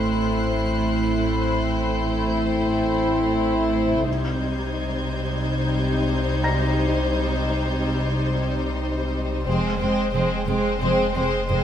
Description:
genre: cinematic, suspense film score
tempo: free time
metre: none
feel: none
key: unclear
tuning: A4 = 440 Hz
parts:
  - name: rich studio violin section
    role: melody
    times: 0.0-11.6 s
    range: C5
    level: -29 LUFS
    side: left 2 dB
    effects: none
  - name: warm studio violin section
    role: second line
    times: 0.0-11.6 s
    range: C4 to E4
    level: -28 LUFS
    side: equal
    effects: none
  - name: warm studio viola section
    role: accompaniment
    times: 0.0-11.6 s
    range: G3 to A3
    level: -29 LUFS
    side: right 1 dB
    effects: none
  - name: mellow French horn section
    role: sustained chords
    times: 0.0-11.1 s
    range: G3 to E4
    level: -28 LUFS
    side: left 1 dB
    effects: none
  - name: warm studio cello section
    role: bass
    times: 0.0-11.6 s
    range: F2 to C3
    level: -29 LUFS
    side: right 1 dB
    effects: none
  - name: warm studio double bass section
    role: bass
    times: 0.0-11.6 s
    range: F1 to C2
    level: -29 LUFS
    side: right 2 dB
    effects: none
  - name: warm sub bass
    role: drone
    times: 0.0-11.6 s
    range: F1 to C2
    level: -29 LUFS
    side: equal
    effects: none
  - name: impact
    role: sound effects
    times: 0.0-1.4 s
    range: none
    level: barely audible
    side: none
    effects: none
  - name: felt-muted upright piano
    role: texture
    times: 0.0-9.5 s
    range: Bb5 to B6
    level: -34 LUFS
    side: left 3 dB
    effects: none
  - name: rich studio violin section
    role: texture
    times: 0.0-9.1 s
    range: C6 to G#6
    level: -34 LUFS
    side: left 3 dB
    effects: none
room: moderate scoring stage reverb, RT60 1.7 s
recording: none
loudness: -20 LUFS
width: side -9 dB against mid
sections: 0.0-11.6 A section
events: impact 0.0-1.4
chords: 0.0 Am; 4.1 Cm; 9.5 Fm

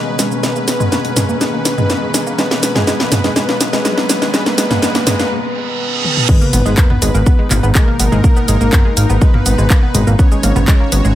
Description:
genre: melodic techno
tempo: 123 BPM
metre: 4/4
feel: straight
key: G# minor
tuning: A4 = 440 Hz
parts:
  - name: expressive portamento lead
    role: melody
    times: 0.0-11.2 s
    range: A#3 to C#4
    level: -22 LUFS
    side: equal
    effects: chorus, cassette tape, sidechain pumping, tape echo
  - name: soft supersaw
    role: second line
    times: 0.0-11.2 s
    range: A#4 to C#5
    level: -24 LUFS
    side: left 1 dB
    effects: sidechain pumping, digital delay
  - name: evolving wavetable pad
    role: sustained chords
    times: 0.0-11.2 s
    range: B2 to F#4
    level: -25 LUFS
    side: left 1 dB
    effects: ensemble chorus, built-in reverb, sidechain pumping
  - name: riser, reverse cymbal and sub drop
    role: sound effects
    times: 0.5-8.2 s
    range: none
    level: -23 LUFS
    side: right 1 dB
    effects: none
  - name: warbly tape-like pad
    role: texture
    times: 0.0-5.3 s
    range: G#4 to A#5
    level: -29 LUFS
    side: left 1 dB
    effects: chorus, built-in reverb, sidechain pumping
  - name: wide unison pluck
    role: arpeggios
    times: 0.1-11.1 s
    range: G#3 to B4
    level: -21 LUFS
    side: equal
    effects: sidechain pumping, digital delay
  - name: house drum kit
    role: drums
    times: 0.2-11.1 s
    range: crash cymbal, handclaps, hi-hat, rim click, shaker, snare drum, toms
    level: -17 LUFS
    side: equal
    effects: small room reverb
  - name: electronic kick drum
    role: drums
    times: 6.3-10.8 s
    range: none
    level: -10 LUFS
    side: equal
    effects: small room reverb
  - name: fat analog bass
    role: bass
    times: 6.5-11.1 s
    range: G#1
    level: -13 LUFS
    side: equal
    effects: sidechain pumping
room: moderate recital hall reverb, RT60 1.4 s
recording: none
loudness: -11 LUFS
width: side -13 dB against mid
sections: 0.0-6.3 A section; 6.3-11.2 B section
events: build-up 0.0-6.3; drum fill 0.0-5.3, 6.0; filter sweep on synth pluck 0.0-6.3; break 5.3-6.3; reverse cymbal 5.3-6.3; drop 6.3-11.2; impact 6.3-8.2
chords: 0.0 G#madd9

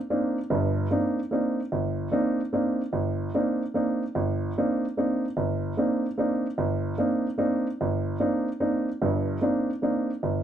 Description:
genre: jazz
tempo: 148 BPM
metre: 3/4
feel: swing 65% on 8ths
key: C minor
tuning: A4 = 438 Hz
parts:
  - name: warm upright piano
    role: solo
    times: 0.1-10.4 s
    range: G1 to Eb4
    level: -24 LUFS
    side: right 1 dB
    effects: none
room: light reverb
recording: dark, warm production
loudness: -24 LUFS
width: side -9 dB against mid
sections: 0.0-10.4 A section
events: none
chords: 0.0 Cm9

